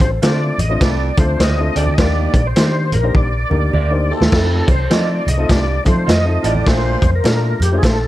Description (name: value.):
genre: uptempo 1960s-style soul.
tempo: 103 BPM.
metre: 4/4.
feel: swing 62% on 8ths.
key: F mixolydian.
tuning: A4 = 441 Hz.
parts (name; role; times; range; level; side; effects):
tonewheel organ; melody; 0.0-8.1 s; G4 to Eb5; -22 LUFS; equal; overdrive, chorus vibrato, slow rotary speaker, tape echo.
vibraphone with soft mallets; second line; 0.0-8.1 s; G4 to Eb5; -30 LUFS; left 7 dB; none.
warm upright piano; accompaniment; 0.0-8.0 s; A3 to C5; -24 LUFS; left 3 dB; none.
bright baritone saxophone; riff; 0.0-7.1 s; D2 to Bb2; -27 LUFS; right 10 dB; none.
vintage muted fingered electric bass; bass; 0.0-8.1 s; A1 to F3; -18 LUFS; equal; none.
crunchy breakbeat drum kit; drums; 0.0-8.0 s; crash cymbal, hi-hat, kick drum, snare drum; -17 LUFS; equal; none.
congas; percussion; 0.0-8.0 s; none; -26 LUFS; right 2 dB; none.
electric guitar through a small old amp; stabs; 0.2-7.4 s; F4 to Eb5; -25 LUFS; right 7 dB; none.
room: small room ambience.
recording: dark, warm production.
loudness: -13 LUFS.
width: side -15 dB against mid.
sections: 0.0-8.1 A section.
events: drum fill 3.2-4.3.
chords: 0.0 Dm7; 2.0 Ebmaj7; 4.3 F7; 6.7 Bbmaj7.